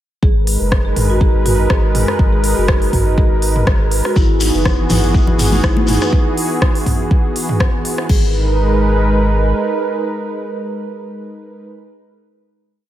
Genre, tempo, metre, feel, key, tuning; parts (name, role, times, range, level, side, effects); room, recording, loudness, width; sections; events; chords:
afro house; 122 BPM; 4/4; swing 54% on 16ths; G# minor; A4 = 440 Hz
warm analog pad; sustained chords; 0.2-11.7 s; E3 to B4; -20 LUFS; right 1 dB; chorus, sidechain pumping
marimba with soft mallets; arpeggios; 0.2-8.3 s; D#4 to D#5; -22 LUFS; equal; sidechain pumping, analog delay
warm sub bass; bass; 0.2-9.5 s; F#1 to G#1; -18 LUFS; equal; sidechain pumping
electronic kick drum; drums; 0.2-8.2 s; -14 LUFS; equal; small room ambience
deep house drum kit; drums; 0.5-8.2 s; crash cymbal, hi-hat, rim click, toms; -21 LUFS; equal; small room ambience
shekere; percussion; 4.2-6.1 s; -26 LUFS; left 3 dB
congas; percussion; 4.7-6.0 s; -22 LUFS; left 2 dB
light reverb; -13 LUFS; side -12 dB against mid
0.2-8.1 drop; 8.1-12.0 final chord
drop 0.2-8.1
0.2 G#m7; 4.2 Eadd9; 8.1 G#m